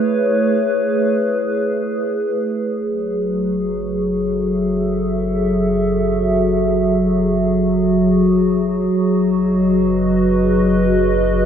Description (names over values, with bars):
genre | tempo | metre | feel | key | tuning
ambient | free time | none | none | F# dorian | A4 = 440 Hz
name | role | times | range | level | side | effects
warbly tape-like pad | sustained chords | 0.0-11.5 s | F#3 to E5 | -15 LUFS | equal | chorus, built-in reverb
warm sub bass | bass | 2.8-11.5 s | F#1 | -27 LUFS | equal | none
room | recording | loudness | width
wet cathedral reverb, RT60 5.3 s | in a vast, echoing space, nothing above 7.7 kHz | -15 LUFS | side -8 dB against mid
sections
0.0-2.8 A section; 2.8-11.5 B section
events
fade-in on sub bass 2.8-11.5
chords
0.0 Amaj7; 2.8 F#m7; 8.9 B6/F#